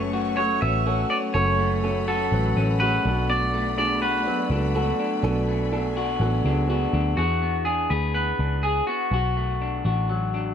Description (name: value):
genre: indie pop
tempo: 124 BPM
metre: 4/4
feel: straight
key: B dorian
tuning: A4 = 440 Hz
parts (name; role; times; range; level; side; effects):
- clean electric guitar; melody; 0.0-9.8 s; F#4 to E5; -26 LUFS; right 2 dB; none
- warm upright piano; accompaniment; 0.0-7.2 s; A3 to B4; -28 LUFS; right 5 dB; none
- rich studio string section; sustained chords; 0.0-7.2 s; A3 to C#6; -35 LUFS; equal; none
- electric guitar through a small old amp; arpeggios; 0.0-10.5 s; F#2 to A4; -28 LUFS; left 6 dB; warbly pitch drift
- vintage muted picked electric bass; bass; 0.0-10.5 s; F#1 to E2; -25 LUFS; equal; none
room: light reverb, small room reverb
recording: none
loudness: -21 LUFS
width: side -8 dB against mid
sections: 0.0-7.2 A section; 7.2-10.5 B section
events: none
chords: 0.0 F#m; 3.0 Bm7; 7.2 E7; 9.1 Bm7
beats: 0.38 0.86 | 1.35 1.83 2.32 2.81 | 3.29 3.78 4.26 4.75 | 5.23 5.72 6.21 6.69 | 7.18 7.67 8.15 8.64 | 9.12 9.61 10.10